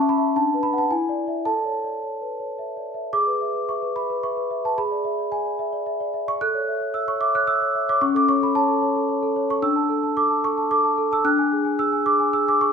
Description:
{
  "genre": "classical, lullaby for celesta",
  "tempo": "110 BPM",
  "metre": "3/4",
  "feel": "straight",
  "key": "A major",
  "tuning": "A4 = 440 Hz",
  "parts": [
    { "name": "large celesta", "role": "solo", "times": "0.0-12.7 s", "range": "C#4 to F#6", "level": "-20 LUFS", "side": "equal", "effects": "none" }
  ],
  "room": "moderate scoring stage reverb, RT60 1.7 s",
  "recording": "minimal, uncompressed stereo recording",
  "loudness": "-20 LUFS",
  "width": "side -6 dB against mid",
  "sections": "0.0-3.1 A section; 3.1-12.7 B section",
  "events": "none",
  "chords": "0.4 Bm7/D; 0.9 E7; 1.5 A; 3.1 E/G#; 4.8 E7/G#; 6.4 A; 8.0 A/C#; 9.6 D5; 11.3 Dadd9(#11)",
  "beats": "0.35 0.90 | 1.46 2.02 2.57 | 3.12 3.67 4.22 | 4.77 5.31 5.86 | 6.39 6.94 7.48 | 8.01 8.55 9.09 | 9.63 10.17 10.71 | 11.25 11.79 12.34"
}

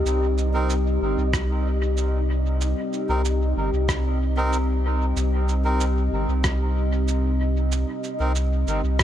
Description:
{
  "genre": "ambient dub",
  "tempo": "94 BPM",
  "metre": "4/4",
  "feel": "straight",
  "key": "C minor",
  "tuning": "A4 = 438 Hz",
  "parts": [
    { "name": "deep dark ambient pad", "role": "sustained chords", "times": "0.0-9.0 s", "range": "C4 to Eb5", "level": "-27 LUFS", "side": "left 2 dB", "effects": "chorus, built-in reverb" },
    { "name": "warm sub bass", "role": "bass", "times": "0.0-9.0 s", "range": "G1 to C2", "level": "-22 LUFS", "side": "equal", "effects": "none" },
    { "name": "wind-like tuned noise texture", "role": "texture", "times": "0.0-9.0 s", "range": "Eb4", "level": "-36 LUFS", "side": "right 5 dB", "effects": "built-in reverb" },
    { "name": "electronic shaker and rim click", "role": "drums", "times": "0.1-9.0 s", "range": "none", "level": "-30 LUFS", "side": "right 1 dB", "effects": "dub echo" },
    { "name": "melodica", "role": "stabs", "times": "0.5-8.3 s", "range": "C4 to Bb4", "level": "-31 LUFS", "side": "right 2 dB", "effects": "dub echo" },
    { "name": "electronic kick drum", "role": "drums", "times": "1.3-9.0 s", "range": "none", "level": "-26 LUFS", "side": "equal", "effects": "none" }
  ],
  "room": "digital ambience",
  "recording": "dark, warm production",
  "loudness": "-21 LUFS",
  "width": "side -11 dB against mid",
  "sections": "0.0-9.0 A section",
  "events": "none",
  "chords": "0.0 Cm",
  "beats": "| 0.06 0.70 1.33 1.97 | 2.61 3.25 3.89 4.53 | 5.16 5.80 6.44 7.08 | 7.72 8.36 8.99"
}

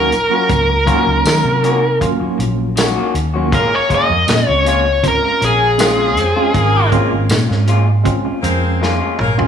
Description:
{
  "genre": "straight-eighth soul blues",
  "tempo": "79 BPM",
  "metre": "4/4",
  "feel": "straight",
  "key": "Bb minor",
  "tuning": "A4 = 440 Hz",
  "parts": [
    { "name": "smooth overdriven lead guitar", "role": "melody", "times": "0.0-6.9 s", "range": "Ab4 to Eb5", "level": "-15 LUFS", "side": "equal", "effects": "none" },
    { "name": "barky tine electric piano", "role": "accompaniment", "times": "0.0-9.5 s", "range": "Gb3 to F4", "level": "-21 LUFS", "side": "right 3 dB", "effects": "medium stereo tremolo" },
    { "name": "electric guitar through a small old amp", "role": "stabs", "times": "0.0-9.5 s", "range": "Bb2 to Gb4", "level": "-22 LUFS", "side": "left 4 dB", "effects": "digital delay" },
    { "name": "vintage muted fingered electric bass", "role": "bass", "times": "0.0-9.5 s", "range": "Ab1 to Eb3", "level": "-17 LUFS", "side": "equal", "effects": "none" },
    { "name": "warm soul drum kit", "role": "drums", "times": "0.1-9.5 s", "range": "hi-hat, kick drum, snare drum, tambourine, toms", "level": "-20 LUFS", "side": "equal", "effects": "none" },
    { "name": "clear horn section", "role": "sustained chords", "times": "3.5-9.4 s", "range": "Bb3 to C5", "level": "-23 LUFS", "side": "left 1 dB", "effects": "none" }
  ],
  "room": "light reverb",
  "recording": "studio reverb",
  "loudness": "-12 LUFS",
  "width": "side -8 dB against mid",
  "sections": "0.0-9.5 A section",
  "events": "lead electric guitar solo 0.0-9.5; drum fill 8.8-9.5",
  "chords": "0.0 Ebm7; 3.5 Bbm7",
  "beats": "| 0.50 1.26 2.01 2.77 | 3.52 4.28 5.03 5.79 | 6.54 7.30 8.05 8.81"
}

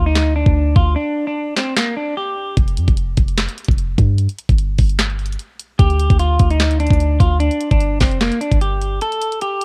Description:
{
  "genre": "hip hop, trap",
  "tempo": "149 BPM",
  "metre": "4/4",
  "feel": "half-time",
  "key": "G minor",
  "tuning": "A4 = 442 Hz",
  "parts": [
    { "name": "clean electric guitar", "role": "melody", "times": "0.0-2.5, 5.8-9.6 s", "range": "Bb3 to A4", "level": "-22 LUFS", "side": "equal", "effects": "cassette tape" },
    { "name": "warm 808-style bass", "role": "bass", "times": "0.0-9.0 s", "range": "F1 to G2", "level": "-19 LUFS", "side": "equal", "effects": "none" },
    { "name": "trap drum kit", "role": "drums", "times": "0.2-9.6 s", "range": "handclaps, hi-hat, kick drum, snare drum", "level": "-19 LUFS", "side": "equal", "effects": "cassette tape" }
  ],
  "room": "digital ambience",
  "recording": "home recording on cassette",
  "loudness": "-17 LUFS",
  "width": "mono",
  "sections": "0.0-9.6 A section",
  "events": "break 0.0-2.6, 9.0-9.6",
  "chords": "0.0 N.C.; 2.6 Fsus2; 4.2 N.C.; 5.8 Dmadd11; 7.4 G5; 9.0 N.C.",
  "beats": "0.15 0.56 | 0.96 1.36 1.76 2.17 | 2.57 2.97 3.38 3.78 | 4.18 4.58 4.99 5.39 | 5.79 6.20 6.60 7.00 | 7.40 7.81 8.21 8.61 | 9.01 9.42"
}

